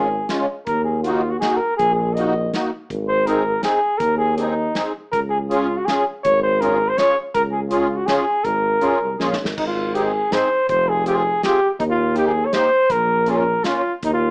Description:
alpine folk, alpine dance band; 162 BPM; 3/4; rubato; Db major, Ab major from 9.6 s; A4 = 440 Hz
warm flugelhorn; melody; 0.0-14.3 s; Eb4 to Eb5; -18 LUFS; equal
musette accordion; accompaniment; 0.0-13.8 s; Ab3 to Ab4; -22 LUFS; equal
mellow tuba; bass; 0.0-14.3 s; F1 to Eb2; -23 LUFS; equal
natural country drum kit; drums; 0.3-14.1 s; crash cymbal, hi-hat, kick drum, snare drum; -29 LUFS; equal
moderate studio reverb, RT60 0.6 s; small speaker sound; -17 LUFS; side -34 dB against mid
0.0-9.6 A section; 9.6-14.3 B section
drum fill 9.2-9.6
0.0 Db; 0.7 Ebm; 2.9 Ab; 5.1 Db; 9.6 Ab; 10.7 Fm; 11.8 Eb; 12.9 Bbm
0.28 | 0.66 1.04 1.42 | 1.80 2.17 2.54 | 2.90 3.27 3.63 | 4.00 4.37 4.75 | 5.13 5.50 5.88 | 6.25 6.62 6.99 | 7.35 7.72 8.08 | 8.45 8.82 9.20 | 9.58 9.95 10.33 | 10.70 11.06 11.43 | 11.80 12.16 12.53 | 12.89 13.27 13.64 | 14.02

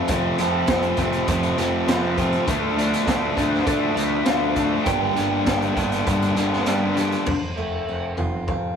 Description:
quiet-loud alternative rock; 100 BPM; 4/4; straight; A4 = 440 Hz
electric guitar at the edge of break-up; melody; 0.0-8.8 s; C5 to A5; -29 LUFS; equal; phaser
biting overdriven guitar; riff; 0.0-7.3 s; F2 to D4; -25 LUFS; right 5 dB
thick fuzz guitar; riff; 0.0-7.3 s; F2 to D4; -22 LUFS; left 4 dB; distortion
growling picked electric bass; bass; 0.0-8.7 s; F1 to D3; -28 LUFS; right 1 dB; overdrive
raw garage drum kit; drums; 0.1-8.6 s; crash cymbal, hi-hat, kick drum, snare drum, toms; -26 LUFS; right 1 dB
picked plugged-in steel-string acoustic guitar; arpeggios; 7.3-8.8 s; F2 to F4; -32 LUFS; right 5 dB
moderate booth ambience, RT60 0.2 s; rough rehearsal-room recording; -19 LUFS; side -7 dB against mid
0.0-7.3 A section; 7.3-8.8 B section
half time 7.3-8.8
0.0 F; 2.5 Dm; 4.9 Gm; 7.3 F
| 0.09 0.69 1.28 1.88 | 2.48 3.07 3.67 4.27 | 4.87 5.47 6.07 6.68 | 7.28 7.89 8.49

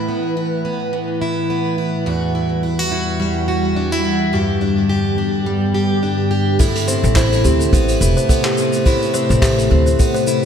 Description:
folktronica; 106 BPM; 4/4; swing 56% on 16ths; A dorian; A4 = 442 Hz
warbly tape-like pad; sustained chords; 0.0-10.4 s; E2 to B4; -22 LUFS; right 1 dB; chorus, built-in reverb
picked plugged-in steel-string acoustic guitar; arpeggios; 0.0-10.4 s; E2 to G4; -18 LUFS; equal; wide subtle chorus, ping-pong delay
kalimba; second line; 6.6-10.4 s; G4 to C5; -20 LUFS; left 3 dB; ping-pong delay
kick drum; drums; 6.6-10.1 s; -15 LUFS; equal
vintage brush drum kit; drums; 6.6-10.4 s; handclaps, hi-hat, shaker; -24 LUFS; equal; low-pass filter on hats, low-pass filter on perc, low-pass filter on snare, low-pass filter on room
upright bass; bass; 7.0-9.9 s; E1 to D2; -16 LUFS; equal; tube saturation
moderate lush hall reverb, RT60 1.9 s, small room ambience; dreamy mix soaked in reverb; -15 LUFS; side -8 dB against mid
0.0-6.6 A section; 6.6-10.4 B section
0.0 Asus2; 2.1 Emadd9; 4.3 G; 6.6 Amadd9
0.37 0.94 1.50 | 2.07 2.63 3.20 3.77 | 4.33 4.90 5.46 6.03 | 6.60 7.16 7.73 8.29 | 8.86 9.43 9.99

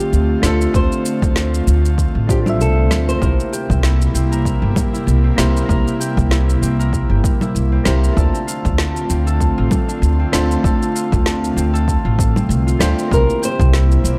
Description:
sunset chillout; 97 BPM; 4/4; swing 56% on 16ths; D minor; A4 = 442 Hz
flamenco guitar; melody; 0.0-3.5, 13.1-14.2 s; G4 to C5; -25 LUFS; equal; tape echo
soft electric-piano-like synth keys; accompaniment; 0.0-14.2 s; A3 to E5; -26 LUFS; equal; chorus, digital delay
airy breathy pad; sustained chords; 0.0-14.2 s; C3 to F4; -25 LUFS; equal; chorus
electronic shaker, snare drum and congas; drums; 0.0-14.2 s; -26 LUFS; equal
upright bass; bass; 0.1-14.2 s; G1 to D2; -18 LUFS; equal
electronic kick drum; drums; 0.7-13.7 s; -21 LUFS; equal
concert harp; arpeggios; 3.2-14.2 s; C4 to Bb4; -29 LUFS; equal; digital delay
light reverb; dark, warm production; -16 LUFS; mono
0.0-13.1 A section; 13.1-14.2 B section
0.0 Dm7; 3.2 C7; 8.2 Dm7; 13.1 C7
0.13 | 0.74 1.36 1.98 2.60 | 3.22 3.84 4.46 5.08 | 5.69 6.31 6.93 7.55 | 8.17 8.79 9.40 10.02 | 10.64 11.26 11.88 12.50 | 13.12 13.73

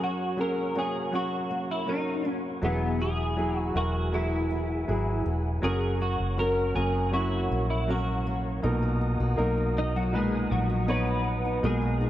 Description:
pop ballad; 80 BPM; 4/4; straight; B major; A4 = 435 Hz
twelve-string electric guitar; melody; 0.0-12.1 s; F#3 to D#5; -30 LUFS; equal; ensemble chorus
clear baby grand piano; accompaniment; 0.0-12.1 s; A#2 to C#5; -30 LUFS; right 1 dB
mellow tonewheel organ; sustained chords; 0.0-12.1 s; G#4 to D#6; -38 LUFS; left 1 dB; chorus vibrato, stopped rotary speaker
fingerpicked steel-string acoustic guitar; arpeggios; 0.0-12.1 s; F#2 to F#4; -37 LUFS; left 4 dB
vintage muted fingered electric bass; bass; 2.6-12.1 s; E1 to B1; -29 LUFS; equal
light reverb, small room ambience; dark, warm production; -25 LUFS; side -13 dB against mid
0.0-8.6 A section; 8.6-12.1 B section
0.0 F#; 2.6 Eadd9; 5.6 F#; 8.6 Bmaj7
0.38 1.13 1.88 | 2.63 3.38 4.13 4.88 | 5.63 6.38 7.13 7.88 | 8.63 9.38 10.13 10.88 | 11.63

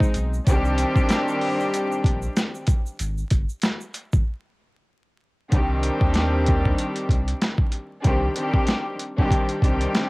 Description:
hip hop, boom-bap hip-hop; 95 BPM; 4/4; swing 58% on 16ths; C minor; A4 = 440 Hz
warm studio string section; accompaniment; 0.0-10.1 s; Eb3 to G4; -24 LUFS; left 1 dB; high-pass filter, low-pass filter, cassette tape
boom bap sampler-style drum kit; drums; 0.0-10.1 s; hi-hat, kick drum, snare drum; -21 LUFS; equal; overdrive, cassette tape
egg shaker; percussion; 0.0-4.2 s; -44 LUFS; right 4 dB
saturated sub bass; bass; 0.2-9.9 s; G1 to Eb2; -25 LUFS; equal; tube saturation
digital ambience; home recording on cassette, vinyl crackle; -20 LUFS; side -24 dB against mid
0.0-5.5 A section; 5.5-10.1 B section
break 3.0-5.5
0.5 Cmadd9; 3.0 N.C.; 5.5 Cmadd9
| 0.47 1.10 1.73 2.36 | 3.00 3.63 4.26 4.89 | 5.52 6.15 6.79 7.42 | 8.05 8.68 9.31 9.94

